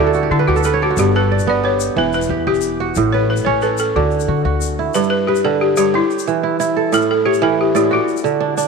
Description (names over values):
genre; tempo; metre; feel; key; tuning
west african traditional, West African string and xylophone music; 121 BPM (dotted quarters); 12/8; straight; G lydian; A4 = 440 Hz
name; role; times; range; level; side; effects
balafon; melody; 0.0-8.7 s; E4 to D5; -19 LUFS; left 5 dB; none
kora; arpeggios; 0.0-8.7 s; G2 to E5; -17 LUFS; right 6 dB; none
upright bass; bass; 0.0-4.9 s; E1 to D3; -20 LUFS; left 3 dB; none
tube shaker; percussion; 0.1-8.7 s; none; -29 LUFS; left 21 dB; none
room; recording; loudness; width
moderate plate reverb, RT60 3.2 s; 1960s-style stereo with parts hard left and right; -14 LUFS; side -4 dB against mid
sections
0.0-4.9 A section; 4.9-8.7 B section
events
kora fill 0.0-1.0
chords
0.0 D; 1.0 G; 2.0 Em; 3.0 A; 4.0 D; 4.9 G; 5.9 Em; 6.9 A; 7.9 D